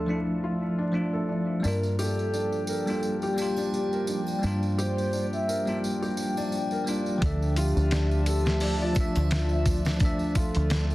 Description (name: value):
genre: trip hop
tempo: 86 BPM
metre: 4/4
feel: swing 56% on 16ths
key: D minor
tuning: A4 = 440 Hz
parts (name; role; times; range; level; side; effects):
- pure breathy sine lead; melody; 0.0-10.9 s; F4 to E5; -32 LUFS; equal; chorus, tape echo
- bell-like tine electric piano; accompaniment; 0.0-10.9 s; F3 to E5; -30 LUFS; equal; harmonic tremolo, vintage 12-bit sampler grit, tape echo
- warbly tape-like pad; sustained chords; 0.0-10.9 s; F3 to A5; -36 LUFS; left 1 dB; chorus, built-in reverb, phaser, vintage 12-bit sampler grit
- felt-muted upright piano; arpeggios; 0.0-10.9 s; D4 to E5; -35 LUFS; left 2 dB; low-pass filter, tape echo
- deep dub fingered electric bass; bass; 0.0-10.9 s; D2 to G2; -28 LUFS; equal; none
- tambourine and triangle; percussion; 1.6-10.9 s; none; -41 LUFS; right 2 dB; none
- dusty soul sampler-style drum kit; drums; 7.2-10.9 s; hi-hat, kick drum, snare drum; -27 LUFS; equal; small room ambience
room: light reverb, digital ambience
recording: dense, heavily limited modern master, vinyl crackle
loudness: -24 LUFS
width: side -17 dB against mid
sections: 0.0-7.2 A section; 7.2-10.9 B section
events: filter sweep on ambient pad 0.0-7.2; filter sweep on felt piano 0.0-7.2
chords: 0.0 Dmadd9; 1.6 Gm7; 7.2 Dmadd9